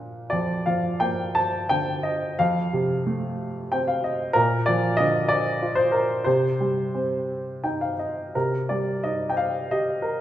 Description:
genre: classical, lyrical solo piano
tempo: 56-64 BPM (dotted quarters)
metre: 6/8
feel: rubato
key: C dorian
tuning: A4 = 440 Hz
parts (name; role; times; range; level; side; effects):
- warm upright piano; solo; 0.0-10.2 s; F2 to A5; -22 LUFS; equal; none
room: wet recital hall reverb, RT60 1.6 s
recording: recorded in a church or concert hall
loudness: -22 LUFS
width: side -12 dB against mid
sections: 0.0-8.3 A section; 8.3-10.2 A section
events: upright piano fill 3.4-4.4, 7.3-8.3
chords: 0.0 Bb; 2.4 F; 4.4 Bb; 6.3 Cm

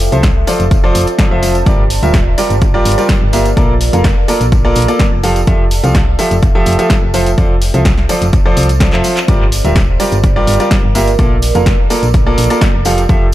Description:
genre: piano house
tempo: 126 BPM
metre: 4/4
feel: straight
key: F major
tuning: A4 = 445 Hz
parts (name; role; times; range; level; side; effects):
- solid FM bass; bass; 0.0-13.3 s; D1 to C2; -15 LUFS; equal; tube saturation, sidechain pumping
- punchy analog drum machine; drums; 0.0-13.2 s; handclaps, hi-hat, snare drum; -20 LUFS; equal; dub echo
- tambourine; percussion; 0.0-13.2 s; none; -27 LUFS; right 2 dB; none
- deep dark ambient pad; texture; 0.0-13.3 s; F4 to A5; -22 LUFS; right 2 dB; chorus, built-in reverb, sidechain pumping
- clear concert grand piano; riff; 0.1-13.2 s; F3 to F5; -15 LUFS; right 1 dB; sidechain pumping, dub echo
- electronic kick drum; drums; 0.2-13.2 s; none; -12 LUFS; equal; none
room: little or no reverb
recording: echo-heavy mix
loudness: -9 LUFS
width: side -14 dB against mid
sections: 0.0-13.3 A section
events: drum fill 8.9-9.3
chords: 0.0 Fmaj9; 1.7 Gm7; 3.6 Bbmaj7; 5.2 Fmaj9; 9.3 Gm7; 11.2 Bbmaj7

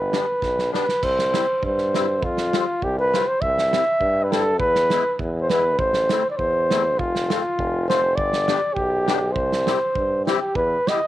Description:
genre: alpine folk, alpine dance band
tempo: 101 BPM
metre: 2/4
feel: straight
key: C major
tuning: A4 = 440 Hz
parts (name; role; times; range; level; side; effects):
- mellow flugelhorn; melody; 0.0-11.1 s; F4 to E5; -20 LUFS; equal; none
- clear tuba; bass; 0.0-10.8 s; F1 to G2; -26 LUFS; equal; none
- musette accordion; accompaniment; 0.1-11.0 s; G3 to G4; -28 LUFS; left 12 dB; none
- loose indie drum kit; drums; 0.1-11.0 s; crash cymbal, hi-hat, kick drum, snare drum; -28 LUFS; right 4 dB; none
room: light reverb, small room ambience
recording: 1960s-style stereo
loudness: -19 LUFS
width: side -14 dB against mid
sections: 0.0-1.0 A section; 1.0-10.5 B section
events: drum fill 0.4-1.0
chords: 0.0 G; 1.0 C; 2.2 Fsus2; 3.4 C; 4.6 E; 5.8 Am; 7.0 F; 8.2 G; 9.3 C; 10.5 Em

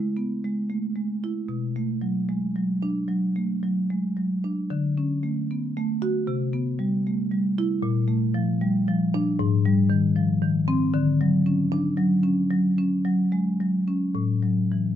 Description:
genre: classical, contemporary piece for solo marimba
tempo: 76 BPM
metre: 4/4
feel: rubato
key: unclear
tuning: A4 = 441 Hz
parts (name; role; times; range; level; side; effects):
- marimba with soft mallets; solo; 0.0-15.0 s; G#2 to F#4; -22 LUFS; equal; none
room: light reverb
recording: close, detailed microphones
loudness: -22 LUFS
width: side -10 dB against mid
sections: 0.0-15.0 A section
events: none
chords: 0.0 C#m7 (rootless); 1.5 Bm7; 4.7 Dmaj7; 6.3 Cmaj7; 7.8 Bbmaj7; 9.4 G#maj7; 10.9 Dmaj7; 14.1 A5

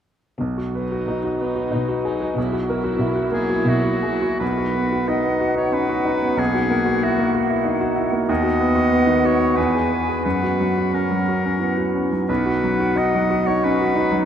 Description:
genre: classical, romantic movement for piano and orchestra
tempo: 77-96 BPM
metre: 3/4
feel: rubato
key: B major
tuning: A4 = 442 Hz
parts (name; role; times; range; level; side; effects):
- clear grand piano; melody; 0.4-14.3 s; B1 to B4; -20 LUFS; equal; none
- warm studio cello section; bass; 0.4-4.3 s; B2; -26 LUFS; equal; none
- rich studio viola section; accompaniment; 0.7-4.4 s; F#3 to E4; -30 LUFS; right 2 dB; none
- clear oboe; second line; 3.3-14.3 s; F#4 to D#5; -24 LUFS; left 1 dB; none
- bright concert flute; second line; 4.4-14.3 s; F#5 to G#5; -28 LUFS; right 2 dB; none
- mellow clarinet; second line; 4.4-14.3 s; A#3 to E4; -26 LUFS; left 3 dB; none
room: wet cathedral reverb, RT60 5.8 s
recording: in a vast, echoing space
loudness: -18 LUFS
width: side -9 dB against mid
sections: 0.4-4.4 A section; 4.4-14.3 B section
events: none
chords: 0.4 B; 2.4 F#7/B; 4.4 B; 6.4 F#7/B; 8.3 B/D#; 9.6 E; 10.2 F#; 12.3 B

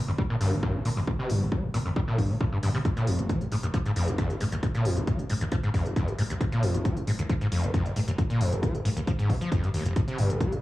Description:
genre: driving peak-time techno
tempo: 135 BPM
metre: 4/4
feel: straight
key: G phrygian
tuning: A4 = 440 Hz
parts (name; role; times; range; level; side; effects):
- growling 808-style bass; bass; 0.0-10.4 s; F1 to G1; -34 LUFS; equal; sidechain pumping, low-pass filter
- screaming distorted acid line; riff; 0.1-10.6 s; F1 to G3; -27 LUFS; equal; distortion, chorus, sidechain pumping, tape echo
- electronic kick drum; drums; 0.2-10.5 s; none; -28 LUFS; equal; overdrive
- electronic hi-hat; drums; 0.4-10.6 s; none; -43 LUFS; equal; overdrive, sidechain pumping on hats
room: light reverb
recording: home recording on cassette, small room ambience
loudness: -24 LUFS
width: side -17 dB against mid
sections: 0.0-10.6 A section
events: none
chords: 0.0 Gm; 2.9 N.C.

